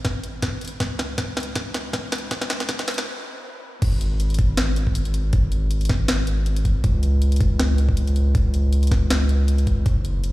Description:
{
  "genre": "future bass",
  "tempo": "159 BPM",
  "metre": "4/4",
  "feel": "swing 55% on 16ths, half-time",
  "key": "unclear",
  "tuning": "A4 = 440 Hz",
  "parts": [
    { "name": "saturated sub bass", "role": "bass", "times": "0.0-10.3 s", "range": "F#1 to C#2", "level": "-21 LUFS", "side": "equal", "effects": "sidechain pumping" },
    { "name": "electronic kick drum", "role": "drums", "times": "0.0-9.9 s", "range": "none", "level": "-21 LUFS", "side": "equal", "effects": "studio reverb" },
    { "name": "trap drum kit", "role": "drums", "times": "0.0-10.3 s", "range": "crash cymbal, hi-hat, snare drum", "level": "-27 LUFS", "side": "equal", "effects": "high-pass filter on snare, studio reverb, high-pass filter on hats, high-pass filter on cymbals" }
  ],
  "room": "little or no reverb",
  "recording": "played on a big sound system in a bare room, large studio reverb, high-pass filter",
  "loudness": "-19 LUFS",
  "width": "side -18 dB against mid",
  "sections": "0.0-3.8 A section; 3.8-10.3 B section",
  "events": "build-up 0.0-3.8; drum fill 0.0-3.1; filter sweep 0.0-3.8; stop 3.1-3.8; drop 3.8-10.3",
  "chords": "none",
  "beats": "0.05 0.42 | 0.80 1.18 1.56 1.94 | 2.31 2.69 3.07 3.44 | 3.82 4.20 4.58 4.95 | 5.33 5.71 6.09 6.46 | 6.84 7.22 7.59 7.97 | 8.35 8.73 9.11 9.48 | 9.86 10.24"
}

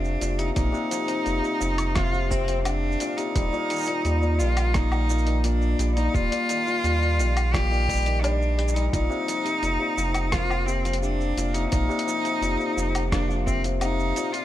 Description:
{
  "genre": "folktronica",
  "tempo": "86 BPM",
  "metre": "4/4",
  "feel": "straight",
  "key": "Bb major",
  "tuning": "A4 = 445 Hz",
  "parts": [
    { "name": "bright cello", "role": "melody", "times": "0.0-14.4 s", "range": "C4 to G4", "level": "-26 LUFS", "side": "left 1 dB", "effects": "tape echo" },
    { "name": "cimbalom", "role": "arpeggios", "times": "0.0-14.4 s", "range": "Bb2 to Bb3", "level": "-29 LUFS", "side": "left 3 dB", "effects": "tape echo" },
    { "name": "warm sub bass", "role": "bass", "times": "0.0-14.1 s", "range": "Eb1 to Eb2", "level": "-25 LUFS", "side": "right 1 dB", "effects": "none" },
    { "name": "lo-fi sampler-style drum kit", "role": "drums", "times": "0.0-14.4 s", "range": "hi-hat, rim click, shaker, woodblock", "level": "-32 LUFS", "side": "equal", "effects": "overdrive, studio ambience" },
    { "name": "electronic kick drum", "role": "drums", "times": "0.6-13.6 s", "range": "none", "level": "-27 LUFS", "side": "right 1 dB", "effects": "overdrive, studio ambience" }
  ],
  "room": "light reverb",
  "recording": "none",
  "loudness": "-22 LUFS",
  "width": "side -13 dB against mid",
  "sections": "0.0-14.4 A section",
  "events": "kick drops out 8.2-8.9",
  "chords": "0.0 Bbsus2; 3.4 Ebadd9; 8.9 Bbsus2",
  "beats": "| 0.56 1.26 1.96 2.65 | 3.35 4.05 4.75 5.45 | 6.14 6.84 7.54 8.24 | 8.93 9.63 10.33 11.03 | 11.72 12.42 13.12 13.82"
}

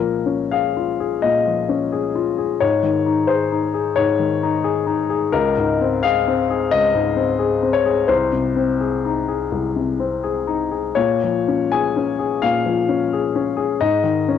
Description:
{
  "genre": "neoclassical minimalist piano",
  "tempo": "74-91 BPM",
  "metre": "4/4",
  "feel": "rubato",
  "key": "unclear",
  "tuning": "A4 = 440 Hz",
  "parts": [
    { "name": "warm grand piano", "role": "solo", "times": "0.0-14.4 s", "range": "C2 to Ab5", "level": "-17 LUFS", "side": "left 6 dB", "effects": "cassette tape" }
  ],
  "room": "moderate spring reverb, RT60 2.1 s",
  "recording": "home recording on cassette",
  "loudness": "-17 LUFS",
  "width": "side -8 dB against mid",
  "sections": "0.0-14.4 A section",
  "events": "none",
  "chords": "0.0 Bbm7; 2.6 Absus4; 5.3 Dbmaj7; 8.1 Cm; 11.0 Bbm7; 13.8 Absus4",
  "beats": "0.51 1.23 1.93 | 2.62 3.29 3.96 4.64 | 5.31 6.03 6.71 7.39 | 8.09 8.80 9.51 10.23 | 10.95 11.71 12.42 13.12 | 13.80"
}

